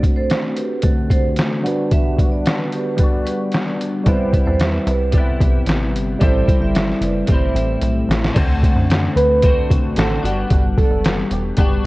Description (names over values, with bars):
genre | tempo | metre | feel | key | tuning
indie pop, bedroom pop | 112 BPM | 4/4 | straight | unclear | A4 = 441 Hz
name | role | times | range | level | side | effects
vibraphone with medium hard mallets | second line | 0.0-7.7 s | E4 to E5 | -26 LUFS | right 4 dB | wide subtle chorus, analog delay
barky tine electric piano | accompaniment | 0.0-8.4 s | G3 to C5 | -24 LUFS | right 2 dB | low-pass filter
twelve-string electric guitar | accompaniment | 0.0-11.9 s | A2 to F#4 | -22 LUFS | left 2 dB | analog chorus, warbly pitch drift, low-pass filter
trip hop sampler-style drum kit | drums | 0.0-11.7 s | crash cymbal, hi-hat, kick drum, snare drum | -17 LUFS | equal | none
plucky analog bass | bass | 4.1-11.8 s | E1 to F#2 | -21 LUFS | equal | none
soft electric-piano-like synth keys | melody | 9.2-11.9 s | F#4 to B4 | -20 LUFS | right 2 dB | lush chorus
room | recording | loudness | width
light reverb | worn, warbling old tape, cassette tape, warbly pitch drift, nothing above 10.7 kHz | -15 LUFS | side -20 dB against mid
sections
0.0-8.4 A section; 8.4-11.9 B section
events
filter sweep 0.0-8.4; drum fill 7.3-8.4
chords
0.0 D7; 1.6 Gmaj7; 4.1 Cmaj7; 6.2 Am7; 8.4 D7; 10.2 Em7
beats
0.30 0.84 1.38 | 1.91 2.45 2.99 3.53 | 4.07 4.60 5.14 5.68 | 6.22 6.75 7.29 7.83 | 8.36 8.90 9.44 9.97 | 10.51 11.04 11.58